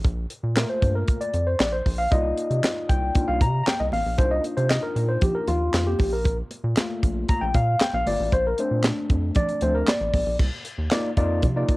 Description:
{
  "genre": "early-eighties boogie funk",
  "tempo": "116 BPM",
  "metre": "4/4",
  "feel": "straight",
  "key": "C dorian",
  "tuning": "A4 = 439 Hz",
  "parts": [
    { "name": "rubbery square bass", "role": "bass", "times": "0.0-11.6 s", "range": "G1 to C3", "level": "-25 LUFS", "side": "equal", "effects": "none" },
    { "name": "tight funk drum kit", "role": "drums", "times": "0.0-11.8 s", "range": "crash cymbal, handclaps, hi-hat, kick drum, snare drum", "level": "-23 LUFS", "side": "equal", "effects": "cassette tape" },
    { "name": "overdriven tine electric piano", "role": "accompaniment", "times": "0.6-11.8 s", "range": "A3 to Bb5", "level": "-24 LUFS", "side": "left 1 dB", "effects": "lush chorus, cassette tape" },
    { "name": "congas", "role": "percussion", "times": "2.1-11.8 s", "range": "none", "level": "-34 LUFS", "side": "right 3 dB", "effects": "none" }
  ],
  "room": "studio reverb",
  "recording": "home recording on cassette",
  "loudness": "-20 LUFS",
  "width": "side -20 dB against mid",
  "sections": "0.0-10.4 A section; 10.4-11.8 B section",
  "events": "tine electric piano solo 0.0-10.4",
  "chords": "0.0 Gm9 (rootless); 2.1 Cm11; 6.0 Gm9/Bb; 8.3 Bbmaj7; 10.4 Cm11"
}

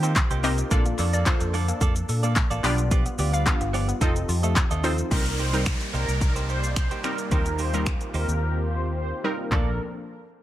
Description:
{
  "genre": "dance-pop",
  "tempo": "109 BPM",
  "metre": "4/4",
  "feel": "straight",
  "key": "Bb major",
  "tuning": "A4 = 439 Hz",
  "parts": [
    { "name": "warm analog pad", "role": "sustained chords", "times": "0.0-9.8 s", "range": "Bb2 to D5", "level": "-35 LUFS", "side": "equal", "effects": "chorus, sidechain pumping" },
    { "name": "woody wave-folded pluck", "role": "arpeggios", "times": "0.0-5.0 s", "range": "D3 to F5", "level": "-34 LUFS", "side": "left 4 dB", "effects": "chorus, sidechain pumping, digital delay" },
    { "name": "direct-recorded clean electric guitar", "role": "riff", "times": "0.0-9.7 s", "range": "Bb3 to Eb5", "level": "-33 LUFS", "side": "right 7 dB", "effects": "wide subtle chorus" },
    { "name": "vintage muted fingered electric bass", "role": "bass", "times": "0.0-9.8 s", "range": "F1 to Eb3", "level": "-26 LUFS", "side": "equal", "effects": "sidechain pumping" },
    { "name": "pop drum kit", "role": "drums", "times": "0.0-9.7 s", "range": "crash cymbal, finger snaps, handclaps, hi-hat, kick drum, shaker, toms", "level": "-25 LUFS", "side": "equal", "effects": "none" },
    { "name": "group handclap", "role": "percussion", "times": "0.2-4.7 s", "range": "none", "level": "-37 LUFS", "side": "left 9 dB", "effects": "none" },
    { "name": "glassy wavetable pluck", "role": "accompaniment", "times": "0.4-9.8 s", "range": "F3 to F5", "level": "-29 LUFS", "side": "left 1 dB", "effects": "chorus, sidechain pumping" },
    { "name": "filtered supersaw swell", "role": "melody", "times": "5.1-9.8 s", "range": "Bb4 to C5", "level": "-33 LUFS", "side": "equal", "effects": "phaser, sidechain pumping, digital delay" },
    { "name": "downlifter", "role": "sound effects", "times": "5.1-9.5 s", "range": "none", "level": "-36 LUFS", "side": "equal", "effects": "none" }
  ],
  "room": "digital ambience",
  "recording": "none",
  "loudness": "-22 LUFS",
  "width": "side -13 dB against mid",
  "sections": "0.0-5.1 A section; 5.1-9.5 B section",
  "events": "silent gap 8.4-9.5",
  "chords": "0.0 Eb6; 0.7 Bbmaj7; 2.6 G7/B; 4.0 F7; 5.1 Cm7; 7.3 Eb6; 9.5 Bbmaj7"
}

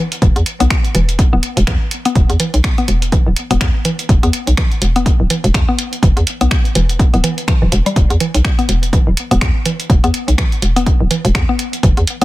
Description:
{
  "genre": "minimal techno",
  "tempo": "124 BPM",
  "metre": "4/4",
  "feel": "swing 58% on 16ths",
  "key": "unclear",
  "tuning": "A4 = 438 Hz",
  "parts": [
    { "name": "mallet-like synth pluck", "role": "riff", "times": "0.0-12.2 s", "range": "E3 to B3", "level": "-20 LUFS", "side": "left 1 dB", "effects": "chorus, sidechain pumping, dub echo" },
    { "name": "punchy analog drum machine", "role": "drums", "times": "0.1-12.2 s", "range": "finger snaps, hi-hat", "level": "-21 LUFS", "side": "right 1 dB", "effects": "soft clipping on snare" },
    { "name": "hollow knocking FM bass", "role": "bass", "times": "0.2-12.2 s", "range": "D1 to E2", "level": "-14 LUFS", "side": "equal", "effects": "sidechain pumping" },
    { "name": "electronic kick drum", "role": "drums", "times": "0.2-11.9 s", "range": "none", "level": "-14 LUFS", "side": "equal", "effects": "none" }
  ],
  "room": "little or no reverb",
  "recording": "dense, heavily limited modern master",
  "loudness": "-12 LUFS",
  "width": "side -17 dB against mid",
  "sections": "0.0-12.2 A section",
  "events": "none",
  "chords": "none"
}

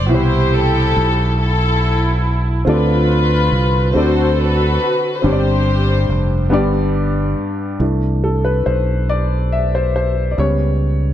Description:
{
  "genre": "slow gospel",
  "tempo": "47 BPM (dotted quarters)",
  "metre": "6/8",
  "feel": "straight",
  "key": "C major",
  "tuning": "A4 = 441 Hz",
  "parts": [
    { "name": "warm studio string section", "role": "melody", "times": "0.0-6.5 s", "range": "E4 to C5", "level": "-18 LUFS", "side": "left 2 dB", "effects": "none" },
    { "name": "warm upright piano", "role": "accompaniment", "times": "0.0-11.1 s", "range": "G2 to E5", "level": "-19 LUFS", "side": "left 1 dB", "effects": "none" },
    { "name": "fingered electric bass", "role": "bass", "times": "0.0-11.1 s", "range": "F1 to D2", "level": "-16 LUFS", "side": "equal", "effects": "none" }
  ],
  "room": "light reverb, studio ambience",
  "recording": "dark, warm production",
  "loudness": "-14 LUFS",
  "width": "side -11 dB against mid",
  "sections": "0.0-7.8 A section; 7.8-11.1 B section",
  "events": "upright piano solo 7.8-11.1",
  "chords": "0.1 Cmaj7; 2.7 Dm7; 4.0 D7; 5.2 Gsus4; 6.5 G; 7.8 C6; 10.4 A7 (rootless)"
}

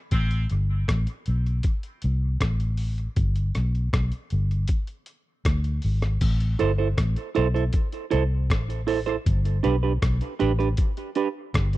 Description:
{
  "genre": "dub reggae",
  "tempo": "79 BPM",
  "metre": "4/4",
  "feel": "straight",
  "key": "A minor",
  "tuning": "A4 = 440 Hz",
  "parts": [
    { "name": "vintage muted fingered electric bass", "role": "bass", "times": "0.1-11.8 s", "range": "G1 to D2", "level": "-23 LUFS", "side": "equal", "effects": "none" },
    { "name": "lo-fi sampler-style drum kit", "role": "drums", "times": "0.1-11.8 s", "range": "crash cymbal, hi-hat, kick drum, rim click", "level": "-25 LUFS", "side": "equal", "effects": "none" },
    { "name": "semi-hollow electric guitar", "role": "accompaniment", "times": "6.6-11.3 s", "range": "D4 to C5", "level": "-26 LUFS", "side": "right 8 dB", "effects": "high-pass filter, dub echo" }
  ],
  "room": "digital ambience",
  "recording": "dry, close 1970s-style studio recording",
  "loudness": "-22 LUFS",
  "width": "side -16 dB against mid",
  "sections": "0.0-6.2 A section; 6.2-11.8 B section",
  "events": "break 0.0-6.2",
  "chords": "0.1 N.C.; 3.2 G; 6.2 Am; 9.3 G"
}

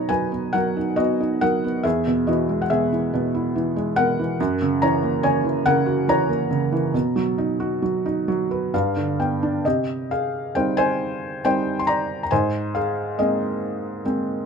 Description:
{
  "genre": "classical, lyrical solo piano",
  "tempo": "65-72 BPM",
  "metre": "3/4",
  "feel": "rubato",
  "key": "B major, C minor from 9.6 s",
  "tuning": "A4 = 440 Hz",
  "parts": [
    { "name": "felt-muted upright piano", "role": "solo", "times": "0.0-14.5 s", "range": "E2 to C6", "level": "-20 LUFS", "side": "equal", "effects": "none" }
  ],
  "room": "light reverb",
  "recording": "close, detailed microphones",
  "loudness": "-20 LUFS",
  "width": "side -6 dB against mid",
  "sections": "0.0-9.6 A section; 9.6-14.5 B section",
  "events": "felt piano fill 8.3-9.6",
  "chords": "0.0 B; 1.8 E; 4.4 F#7; 6.9 B; 8.7 G7; 9.6 Cm; 12.3 Abadd9"
}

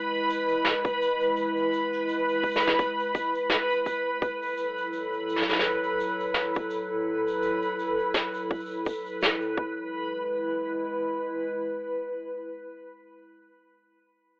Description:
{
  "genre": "folktronica",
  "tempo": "84 BPM",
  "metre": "4/4",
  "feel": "swing 56% on 16ths",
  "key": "E major",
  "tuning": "A4 = 440 Hz",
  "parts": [
    { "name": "warbly tape-like pad", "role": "sustained chords", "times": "0.0-13.6 s", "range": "F#3 to B4", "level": "-29 LUFS", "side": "equal", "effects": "chorus, built-in reverb" },
    { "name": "backwards swelling texture", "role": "texture", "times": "0.0-9.9 s", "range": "B4 to B5", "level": "-29 LUFS", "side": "equal", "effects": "built-in reverb" },
    { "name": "shaker and snare drum", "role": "drums", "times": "0.1-9.5 s", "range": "none", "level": "-25 LUFS", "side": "equal", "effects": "none" },
    { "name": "electronic kick drum", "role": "drums", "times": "0.8-9.7 s", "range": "none", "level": "-30 LUFS", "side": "equal", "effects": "none" }
  ],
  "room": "moderate small room ambience, RT60 0.5 s",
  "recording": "rough home demo mix, telephone sound",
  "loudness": "-25 LUFS",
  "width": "side -24 dB against mid",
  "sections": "0.0-9.9 A section; 9.9-12.8 B section",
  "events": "none",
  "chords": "0.0 E; 4.2 F#m7; 9.6 E"
}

